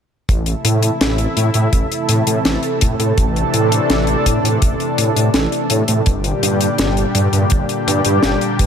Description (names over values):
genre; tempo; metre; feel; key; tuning
synthwave; 83 BPM; 4/4; straight; unclear; A4 = 440 Hz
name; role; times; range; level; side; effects
analog string pad; sustained chords; 0.3-8.7 s; Bb2 to A4; -18 LUFS; equal; ensemble chorus, sidechain pumping
wide detuned saw bass; bass; 0.3-8.7 s; G1 to A2; -17 LUFS; equal; chorus, sidechain pumping
deep reggae drum kit; drums; 0.3-8.7 s; hi-hat, snare drum; -20 LUFS; left 3 dB; none
kick drum; drums; 0.3-8.7 s; none; -16 LUFS; equal; none
room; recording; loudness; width
light reverb, studio reverb; none; -14 LUFS; side -8 dB against mid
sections
0.3-8.7 A section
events
none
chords
0.3 Am; 6.1 Gm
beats
| 0.29 1.01 1.73 2.46 | 3.18 3.90 4.62 5.35 | 6.07 6.79 7.51 8.24